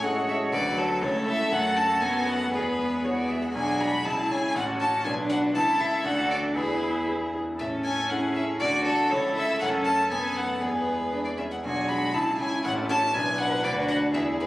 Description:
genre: quick classical-period movement for piano quintet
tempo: 119 BPM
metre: 2/4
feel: straight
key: A major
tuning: A4 = 440 Hz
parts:
  - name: warm violin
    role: melody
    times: 0.0-14.5 s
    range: A4 to B5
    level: -27 LUFS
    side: left 1 dB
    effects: none
  - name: dark cello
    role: second line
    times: 0.0-14.5 s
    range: C#4 to B4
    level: -32 LUFS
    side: right 2 dB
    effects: none
  - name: rich violin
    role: second line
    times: 0.0-14.5 s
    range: F#4 to C#5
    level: -33 LUFS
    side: left 1 dB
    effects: none
  - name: clear concert grand piano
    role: accompaniment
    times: 0.0-14.5 s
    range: A1 to D5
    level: -31 LUFS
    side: left 1 dB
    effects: none
  - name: dark viola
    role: accompaniment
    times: 0.0-14.5 s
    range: F#3 to E4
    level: -30 LUFS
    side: equal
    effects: none
room: wet recital hall reverb, RT60 1.8 s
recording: recorded on a phone in the room, club reverb, compression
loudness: -23 LUFS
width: side -17 dB against mid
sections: 0.0-7.6 A section; 7.6-14.5 A section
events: none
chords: 0.0 A; 0.5 D; 1.0 A/C#; 1.5 F#m; 2.0 B7/F#; 2.5 E; 3.5 G#dim/B; 4.1 C#m; 4.6 F#m/A; 5.1 Bm; 5.6 A/C#; 6.1 D; 6.6 E; 7.6 A; 8.6 D; 9.1 A/C#; 9.6 F#m; 10.1 B7/F#; 10.6 E; 11.6 G#dim/B; 12.1 C#m; 12.6 F#m/A; 13.1 Bm; 13.6 Bm/D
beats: 0.03 | 0.53 1.02 | 1.51 2.01 | 2.52 3.04 | 3.55 4.06 | 4.56 5.06 | 5.55 6.05 | 6.56 7.08 | 7.59 8.11 | 8.61 9.11 | 9.61 10.11 | 10.62 11.13 | 11.64 12.14 | 12.64 13.14 | 13.64 14.14

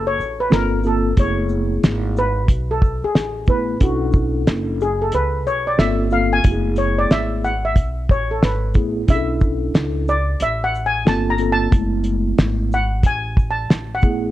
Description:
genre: hip hop, jazz-hop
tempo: 91 BPM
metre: 4/4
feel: swing 61% on 16ths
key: unclear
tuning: A4 = 440 Hz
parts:
  - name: steel pan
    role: melody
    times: 0.0-14.3 s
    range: F#4 to Bb5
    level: -22 LUFS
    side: left 1 dB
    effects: none
  - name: upright bass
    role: bass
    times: 0.0-14.3 s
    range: F#1 to C#2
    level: -23 LUFS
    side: equal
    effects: none
  - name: cloth-damped thuddy drum kit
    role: drums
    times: 0.2-14.2 s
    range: hi-hat, kick drum, shaker, snare drum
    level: -15 LUFS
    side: equal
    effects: none
  - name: mellow tine electric piano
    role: accompaniment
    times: 0.5-14.3 s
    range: G#3 to B4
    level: -22 LUFS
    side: equal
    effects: medium stereo tremolo
room: studio ambience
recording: none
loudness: -16 LUFS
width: side -14 dB against mid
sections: 0.0-14.3 A section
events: steel pan solo 0.0-14.3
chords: 0.0 B7sus2; 0.5 Gm11; 1.2 F#m11; 3.8 Bm11; 5.8 Gm11; 6.4 F#m11; 9.1 Bm11; 11.1 Gm11; 11.7 F#m11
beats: 0.51 | 1.17 1.83 2.49 3.15 | 3.81 4.47 5.13 5.79 | 6.45 7.11 7.76 8.42 | 9.08 9.74 10.40 11.06 | 11.72 12.38 13.04 13.70

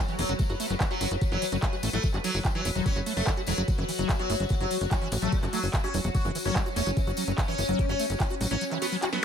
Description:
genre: psychedelic trance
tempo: 146 BPM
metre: 4/4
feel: straight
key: F# minor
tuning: A4 = 440 Hz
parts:
  - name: overtone-sweeping drone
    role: sustained chords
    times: 0.0-9.2 s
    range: F#3 to B4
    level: -36 LUFS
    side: equal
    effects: chorus, built-in reverb, phaser, sidechain pumping
  - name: liquid acid bass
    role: riff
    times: 0.1-9.2 s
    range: E3 to F#4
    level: -33 LUFS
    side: moving between left 5 dB and right 4 dB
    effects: chorus, auto-pan, sidechain pumping, ping-pong delay
  - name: drum and bass drum kit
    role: drums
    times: 0.1-9.2 s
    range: handclaps, hi-hat, snare drum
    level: -34 LUFS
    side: right 1 dB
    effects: none
  - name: tambourine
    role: percussion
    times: 0.1-9.2 s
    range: none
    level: -39 LUFS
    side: left 5 dB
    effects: none
  - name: sitar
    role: melody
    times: 0.2-9.2 s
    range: F#3 to F#4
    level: -33 LUFS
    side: left 2 dB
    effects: phaser, vintage 12-bit sampler grit, sidechain pumping, digital delay
  - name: tight sequencer bass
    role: bass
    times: 0.2-8.6 s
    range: E1 to A1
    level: -30 LUFS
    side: equal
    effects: none
  - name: electronic kick drum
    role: drums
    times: 0.4-8.3 s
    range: none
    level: -27 LUFS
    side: equal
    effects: none
  - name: resonant blip pluck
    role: second line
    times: 4.2-5.1 s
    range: B3 to C#4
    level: -46 LUFS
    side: right 4 dB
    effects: none
room: little or no reverb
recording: none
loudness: -25 LUFS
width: side -8 dB against mid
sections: 0.0-9.2 A section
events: none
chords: 0.0 F#5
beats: 0.39 0.80 | 1.21 1.62 2.04 2.45 | 2.86 3.27 3.68 4.09 | 4.50 4.91 5.32 5.74 | 6.15 6.56 6.97 7.38 | 7.79 8.20 8.61 9.02

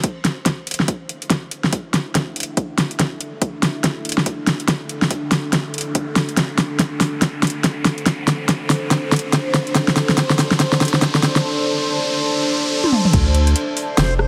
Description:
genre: deep dubstep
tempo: 142 BPM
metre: 4/4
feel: swing 60% on 16ths, half-time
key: unclear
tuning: A4 = 440 Hz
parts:
  - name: deep dark ambient pad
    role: sustained chords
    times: 0.0-14.3 s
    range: D4 to E5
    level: -28 LUFS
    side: equal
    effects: chorus, built-in reverb
  - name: deep house drum kit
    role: drums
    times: 0.0-14.3 s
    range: crash cymbal, hi-hat, rim click, snare drum, toms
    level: -20 LUFS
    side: equal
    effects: overdrive
  - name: electronic kick drum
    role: drums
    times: 0.0-13.2 s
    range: none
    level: -25 LUFS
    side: equal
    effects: overdrive, high-pass filter on kick
  - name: riser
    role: sound effects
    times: 0.1-13.1 s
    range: none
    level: -31 LUFS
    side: equal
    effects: none
  - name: saturated sub bass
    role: bass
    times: 13.1-14.3 s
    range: F1 to D2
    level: -18 LUFS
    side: equal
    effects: none
  - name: backwards swelling texture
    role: texture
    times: 13.4-14.3 s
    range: C5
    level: -31 LUFS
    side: equal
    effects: built-in reverb
room: light reverb, digital ambience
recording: heavily compressed radio sound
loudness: -19 LUFS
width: mono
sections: 0.0-13.1 A section; 13.1-14.3 B section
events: build-up 0.0-13.1; drum fill 0.0-11.4, 12.8-13.1; riser 0.1-13.1; drop 13.1-14.3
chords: 0.0 Dsus2; 13.1 Dmadd9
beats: 0.04 0.46 0.88 | 1.30 1.73 2.15 2.57 | 2.99 3.42 3.84 4.26 | 4.68 5.11 5.53 5.95 | 6.37 6.80 7.22 7.64 | 8.06 8.49 8.91 9.33 | 9.75 10.18 10.60 11.02 | 11.44 11.87 12.29 12.71 | 13.13 13.56 13.98

